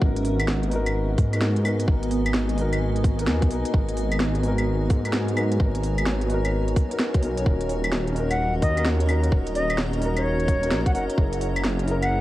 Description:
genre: future garage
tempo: 129 BPM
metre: 4/4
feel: swing 64% on 16ths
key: G# minor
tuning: A4 = 440 Hz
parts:
  - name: felt-muted upright piano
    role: accompaniment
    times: 0.0-12.2 s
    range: B3 to A#4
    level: -28 LUFS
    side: left 1 dB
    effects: sidechain pumping, analog delay
  - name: granular cloud pad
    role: sustained chords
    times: 0.0-12.2 s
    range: B3 to A#5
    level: -31 LUFS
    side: right 1 dB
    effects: built-in reverb, sidechain pumping
  - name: dark detuned saw bass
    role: bass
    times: 0.0-12.2 s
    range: D#1 to G#2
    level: -25 LUFS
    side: equal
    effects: sidechain pumping
  - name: electronic kick drum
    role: drums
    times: 0.0-11.3 s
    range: none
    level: -22 LUFS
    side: equal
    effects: none
  - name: organic electronic drum kit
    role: drums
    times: 0.2-12.1 s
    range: claves, hi-hat, snare drum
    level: -28 LUFS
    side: equal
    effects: low-pass filter on hats, low-pass filter on snare, low-pass filter on perc, low-pass filter on room
  - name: reedy silver concert flute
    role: melody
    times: 8.3-12.2 s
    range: C#5 to F#5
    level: -28 LUFS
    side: left 1 dB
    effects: analog delay
room: light reverb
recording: vinyl crackle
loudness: -21 LUFS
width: side -16 dB against mid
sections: 0.0-12.2 A section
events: none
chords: 0.0 G#m7; 7.5 D#m7; 11.2 F#7

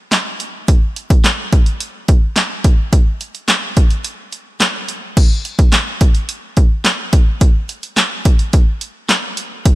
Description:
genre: pop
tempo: 107 BPM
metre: 4/4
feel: straight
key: none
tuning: none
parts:
  - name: punchy analog drum machine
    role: drums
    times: 0.1-9.8 s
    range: crash cymbal, handclaps, hi-hat, kick drum, snare drum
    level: -12 LUFS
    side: equal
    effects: none
room: little or no reverb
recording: none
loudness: -12 LUFS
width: side -18 dB against mid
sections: 0.0-5.2 A section; 5.2-9.8 B section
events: break 4.0-5.2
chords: none

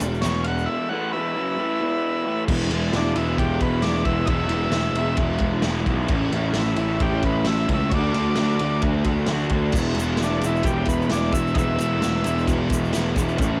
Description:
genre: garage rock duo or trio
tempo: 132 BPM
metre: 4/4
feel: straight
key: E mixolydian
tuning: A4 = 440 Hz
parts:
  - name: raw garage guitar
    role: riff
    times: 0.0-13.6 s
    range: E2 to F#4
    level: -27 LUFS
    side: equal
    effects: overdrive, cassette tape
  - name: fuzz picked electric bass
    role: bass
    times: 0.0-13.6 s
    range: E1 to D2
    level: -27 LUFS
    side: equal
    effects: overdrive
  - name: raw garage drum kit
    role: drums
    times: 0.0-13.5 s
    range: crash cymbal, kick drum, ride cymbal, snare drum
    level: -29 LUFS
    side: equal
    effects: cassette tape
  - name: tube shaker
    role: percussion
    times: 0.0-0.6, 9.8-13.5 s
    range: none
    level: -41 LUFS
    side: equal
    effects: none
  - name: overdriven combo organ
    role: melody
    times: 0.2-12.5 s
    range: D4 to F#5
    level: -30 LUFS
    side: equal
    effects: cassette tape
room: little or no reverb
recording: home recording on cassette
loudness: -22 LUFS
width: mono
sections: 0.0-2.5 A section; 2.5-13.6 B section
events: transistor combo organ solo 0.0-2.5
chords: 0.0 E5; 2.5 E; 6.1 A; 7.9 D; 9.7 E

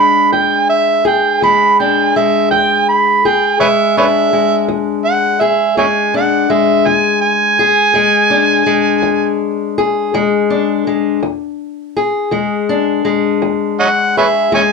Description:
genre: acoustic country blues, solo or duo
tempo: 55 BPM (dotted quarters)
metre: 12/8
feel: straight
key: E mixolydian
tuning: A4 = 440 Hz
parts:
  - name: overdriven harmonica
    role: melody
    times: 0.0-14.7 s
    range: B4 to B5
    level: -12 LUFS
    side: right 4 dB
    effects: plate reverb
  - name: fingerpicked steel-string acoustic guitar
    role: accompaniment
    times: 0.0-14.7 s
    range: E2 to G#4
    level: -15 LUFS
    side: left 6 dB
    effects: none
room: moderate studio reverb, RT60 0.5 s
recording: none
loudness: -11 LUFS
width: side -4 dB against mid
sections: 0.0-14.7 A section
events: harmonica solo 0.0-14.7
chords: 0.0 E7

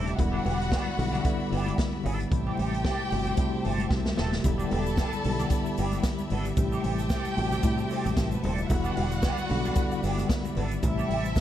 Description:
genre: disco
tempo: 113 BPM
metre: 4/4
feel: swing 56% on 16ths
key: E minor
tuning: A4 = 438 Hz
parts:
  - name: warm studio violin section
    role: second line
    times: 0.0-11.4 s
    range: B3 to A5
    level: -34 LUFS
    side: equal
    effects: analog delay
  - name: semi-hollow electric guitar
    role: accompaniment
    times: 0.0-11.4 s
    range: A3 to A4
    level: -37 LUFS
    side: right 5 dB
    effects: wah
  - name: tine electric piano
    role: accompaniment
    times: 0.0-11.4 s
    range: B2 to F#4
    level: -30 LUFS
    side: left 2 dB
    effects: overdrive, fast stereo tremolo
  - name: clear studio string section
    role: sustained chords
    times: 0.0-11.4 s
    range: G3 to B5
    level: -38 LUFS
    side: left 1 dB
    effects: none
  - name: fingered electric bass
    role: bass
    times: 0.0-11.4 s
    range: D#1 to A2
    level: -30 LUFS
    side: right 1 dB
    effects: none
  - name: vintage drum kit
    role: drums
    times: 0.1-11.4 s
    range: hi-hat, kick drum, snare drum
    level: -30 LUFS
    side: equal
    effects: none
  - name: congas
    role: percussion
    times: 0.2-11.4 s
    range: none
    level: -38 LUFS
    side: left 4 dB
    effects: none
  - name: egg shaker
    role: percussion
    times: 4.4-11.4 s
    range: none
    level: -51 LUFS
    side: right 10 dB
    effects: none
room: light reverb, small room ambience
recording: dark, warm production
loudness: -25 LUFS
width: side -11 dB against mid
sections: 0.0-11.4 A section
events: drum fill 3.9-4.4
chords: 0.2 Em7; 2.3 Am7; 4.4 Em7; 6.6 Am7; 8.7 Em7; 10.8 Am7

